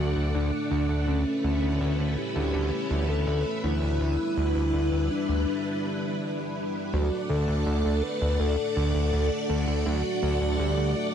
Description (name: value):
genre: synthwave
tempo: 82 BPM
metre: 4/4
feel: straight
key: D major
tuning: A4 = 440 Hz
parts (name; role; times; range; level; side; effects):
- soft octave-layered synth lead; melody; 0.0-11.1 s; C#4 to B4; -30 LUFS; equal; chorus, phaser, ping-pong delay
- string machine, full ensemble; sustained chords; 0.0-11.1 s; G3 to F#5; -30 LUFS; equal; ensemble chorus
- fat analog bass; bass; 0.0-10.9 s; D2; -26 LUFS; equal; none
room: light reverb, digital ambience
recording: none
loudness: -24 LUFS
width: side -8 dB against mid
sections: 0.0-6.9 A section; 6.9-11.1 B section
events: break 5.5-6.9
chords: 0.0 D; 1.1 Aadd9/D; 4.0 G6/D; 6.9 D